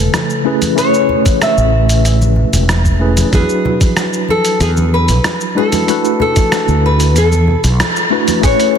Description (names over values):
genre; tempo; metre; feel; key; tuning
sunset chillout; 94 BPM; 4/4; straight; A major; A4 = 440 Hz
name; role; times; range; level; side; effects
nylon-string guitar; melody; 0.0-8.8 s; G#4 to E5; -17 LUFS; left 2 dB; digital delay
mellow tine electric piano; accompaniment; 0.0-8.8 s; C#3 to G#5; -16 LUFS; equal; medium stereo tremolo, auto-pan, tape echo
mellow fretless electric bass; bass; 0.0-8.5 s; E1 to E2; -12 LUFS; equal; none
dusty soul sampler-style drum kit; drums; 0.1-8.7 s; cabasa, hi-hat, rim click; -19 LUFS; right 1 dB; studio reverb, soft clipping on snare
congas and bongos; percussion; 0.1-8.8 s; none; -24 LUFS; left 1 dB; none
electronic kick drum; drums; 1.3-8.6 s; none; -13 LUFS; right 1 dB; studio reverb
soft round pluck; arpeggios; 8.4-8.6 s; G#4; -24 LUFS; right 5 dB; chorus
room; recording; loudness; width
moderate lush hall reverb, RT60 2.9 s; dense, heavily limited modern master; -10 LUFS; side -7 dB against mid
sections
0.0-8.4 A section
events
break 7.8-8.4; band accent 7.8-8.1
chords
0.0 Amaj7; 3.3 E9; 5.9 D69; 7.2 E9sus4